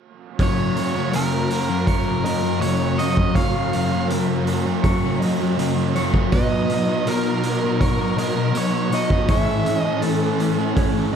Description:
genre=rock, shoegaze and dream pop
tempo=81 BPM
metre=4/4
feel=straight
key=F# major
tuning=A4 = 440 Hz
part: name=nasal lead guitar with a parked wah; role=melody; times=0.4-10.0 s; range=A#4 to E#5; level=-26 LUFS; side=right 2 dB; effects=overdrive, slapback echo
part: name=brassy analog pad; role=sustained chords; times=0.4-11.2 s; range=F#2 to A#5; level=-27 LUFS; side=right 3 dB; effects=chorus
part: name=electric guitar through a small old amp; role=arpeggios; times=0.4-11.2 s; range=A4 to D#5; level=-30 LUFS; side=left 1 dB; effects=wide subtle chorus, slapback echo
part: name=overdriven electric guitar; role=riff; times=0.4-11.2 s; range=A2 to A4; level=-25 LUFS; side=right 9 dB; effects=reverse reverb
part: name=thick fuzz guitar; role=riff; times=0.4-11.2 s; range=F#2 to B3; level=-23 LUFS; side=left 9 dB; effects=distortion, ensemble chorus
part: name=raw garage drum kit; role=drums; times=0.4-10.9 s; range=hi-hat, kick drum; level=-24 LUFS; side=equal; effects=none
room=light reverb, studio reverb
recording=dark, warm production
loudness=-18 LUFS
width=side -7 dB against mid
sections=0.4-11.2 A section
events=none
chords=0.4 F#; 6.3 Bmaj7; 9.3 A

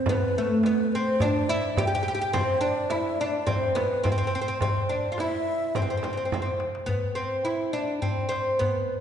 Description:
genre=Arabic maqam ensemble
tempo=105 BPM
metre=4/4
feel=straight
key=C maqam ajam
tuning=A4 = 440 Hz
part: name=oud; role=melody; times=0.0-9.0 s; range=A3 to G4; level=-25 LUFS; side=equal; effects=none
part: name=breathy bright low ney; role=second line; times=0.0-6.6 s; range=B4 to G5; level=-32 LUFS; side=left 2 dB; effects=none
part: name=darbuka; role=percussion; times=0.1-8.8 s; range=none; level=-31 LUFS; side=left 1 dB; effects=none
part: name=frame drum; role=percussion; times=0.1-6.5 s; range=none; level=-32 LUFS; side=right 3 dB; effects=none
room=wet concert hall reverb, RT60 2.0 s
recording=recorded in a church or concert hall, nothing above 10.8 kHz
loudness=-24 LUFS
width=side -8 dB against mid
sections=0.0-6.9 A section; 6.9-9.0 B section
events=drum fill 6.3-6.9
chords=none

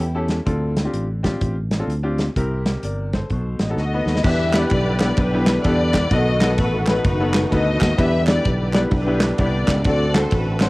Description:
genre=uptempo gospel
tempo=128 BPM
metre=4/4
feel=swing 63% on 8ths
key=unclear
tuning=A4 = 438 Hz
part: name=rich symphonic string section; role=melody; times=0.0-0.3, 3.8-10.7 s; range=G3 to E5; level=-23 LUFS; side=left 2 dB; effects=cassette tape
part: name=bright upright piano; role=accompaniment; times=0.0-10.7 s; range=B2 to B5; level=-24 LUFS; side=left 1 dB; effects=none
part: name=fingered electric bass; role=bass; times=0.0-10.7 s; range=F#1 to E2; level=-22 LUFS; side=equal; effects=none
part: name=natural country drum kit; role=drums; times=0.0-10.7 s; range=crash cymbal, hi-hat, kick drum, ride cymbal, snare drum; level=-22 LUFS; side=equal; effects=none
part: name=percussive tonewheel organ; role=sustained chords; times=4.2-10.7 s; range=D3 to F#4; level=-27 LUFS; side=right 2 dB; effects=fast rotary speaker, overdrive, chorus vibrato
part: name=group handclap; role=percussion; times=4.5-10.7 s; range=none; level=-31 LUFS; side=right 2 dB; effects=none
room=little or no reverb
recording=home recording on cassette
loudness=-17 LUFS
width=side -21 dB against mid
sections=0.0-4.2 A section; 4.2-10.7 B section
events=upright piano fill 0.0-0.5, 3.3-4.2; drum fill 3.8-4.2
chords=0.5 Dm7; 2.4 C7; 3.3 B7; 4.2 Em7; 6.1 B7; 8.0 Em7; 9.8 D7

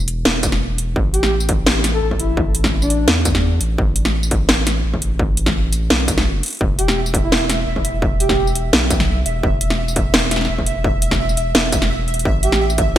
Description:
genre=half-time drum and bass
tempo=170 BPM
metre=4/4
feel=swing 53% on 16ths, half-time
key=E minor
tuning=A4 = 439 Hz
part: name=saturated sub bass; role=bass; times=0.0-13.0 s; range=E1 to E2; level=-20 LUFS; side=equal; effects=tube saturation
part: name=drum and bass drum kit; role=drums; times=0.1-12.9 s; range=hi-hat, snare drum, tambourine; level=-18 LUFS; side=equal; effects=none
part: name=electronic kick drum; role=drums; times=0.4-12.9 s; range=none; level=-20 LUFS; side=equal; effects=distortion
part: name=breathy flute-like synth lead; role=melody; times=1.1-3.1, 6.8-8.5, 12.4-12.6 s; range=D4 to A4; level=-23 LUFS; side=equal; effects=tremolo, wide subtle chorus, ping-pong delay
part: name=pulsing gated texture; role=texture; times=6.8-13.0 s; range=E5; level=-25 LUFS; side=right 2 dB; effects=chorus, built-in reverb
room=light reverb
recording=bright 1980s-style digital production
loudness=-15 LUFS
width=side -12 dB against mid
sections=0.0-13.0 A section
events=none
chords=0.0 E5; 1.0 A5; 6.6 E5; 12.3 A5

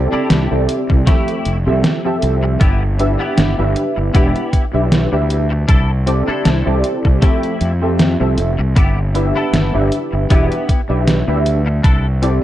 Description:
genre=vaporwave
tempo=78 BPM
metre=4/4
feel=swing 55% on 16ths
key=G mixolydian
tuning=A4 = 440 Hz
part: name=warbly lo-fi synth keys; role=accompaniment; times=0.0-12.4 s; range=F3 to E5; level=-19 LUFS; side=right 1 dB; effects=ensemble chorus, analog delay
part: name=fuzz fingered electric bass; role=bass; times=0.0-12.4 s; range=E1 to F2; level=-17 LUFS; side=equal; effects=overdrive
part: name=clean electric guitar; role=riff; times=0.1-12.3 s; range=A3 to A4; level=-25 LUFS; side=left 2 dB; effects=ensemble chorus, analog delay
part: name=detuned 8-bit digital drum machine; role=drums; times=0.3-12.4 s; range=hi-hat, snare drum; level=-18 LUFS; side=equal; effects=studio reverb
part: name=electronic kick drum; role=drums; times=0.9-12.0 s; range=none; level=-12 LUFS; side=equal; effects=studio reverb
room=light reverb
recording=dark, warm production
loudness=-13 LUFS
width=side -13 dB against mid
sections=0.0-12.4 A section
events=none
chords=0.0 C69; 1.1 Fmaj9; 2.6 G6; 5.7 C69; 7.2 Fmaj9; 8.8 G6; 11.8 C69

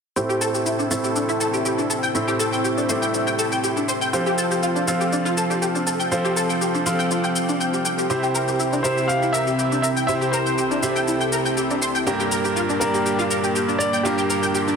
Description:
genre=progressive house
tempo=121 BPM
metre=4/4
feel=straight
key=unclear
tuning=A4 = 439 Hz
part: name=lush unison pad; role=sustained chords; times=0.2-14.8 s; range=C3 to G5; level=-28 LUFS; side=left 1 dB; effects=chorus, phaser
part: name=analog pluck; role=arpeggios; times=0.2-14.7 s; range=D4 to G5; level=-24 LUFS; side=left 1 dB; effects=ensemble chorus, digital delay
part: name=clear baby grand piano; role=stabs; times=0.2-14.8 s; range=G2 to F5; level=-23 LUFS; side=right 2 dB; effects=low-pass filter, digital delay
part: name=cabasa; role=drums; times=0.2-14.8 s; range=none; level=-29 LUFS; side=left 2 dB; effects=overdrive
part: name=clear baby grand piano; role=melody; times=8.8-14.8 s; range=G4 to F5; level=-24 LUFS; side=left 1 dB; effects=vintage 12-bit sampler grit, digital delay
room=wet lush hall reverb, RT60 2.0 s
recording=dense, heavily limited modern master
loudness=-19 LUFS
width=side -6 dB against mid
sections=0.2-14.8 A section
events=filter sweep on grand piano 0.2-14.8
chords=0.2 Am; 4.1 F; 8.1 C; 12.1 Gm

